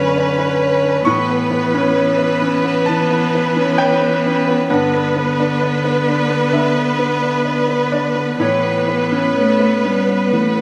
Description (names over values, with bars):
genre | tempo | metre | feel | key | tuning
neoclassical piano and strings | 62-67 BPM | 4/4 | rubato | unclear | A4 = 440 Hz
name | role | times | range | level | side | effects
rich chamber violin section | melody | 0.0-10.6 s | B4 | -22 LUFS | equal | none
clear cello | second line | 0.0-10.6 s | D3 to A3 | -24 LUFS | equal | none
felt-muted upright piano | accompaniment | 0.0-10.6 s | F#2 to C#6 | -21 LUFS | equal | none
rich viola | accompaniment | 0.0-10.6 s | B3 to C#4 | -24 LUFS | equal | none
room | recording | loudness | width
moderate studio reverb, RT60 0.5 s | studio reverb | -16 LUFS | mono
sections
0.0-10.6 A section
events
none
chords
0.0 Bmadd9; 1.1 Aadd9; 4.7 Gmaj7; 8.4 Aadd9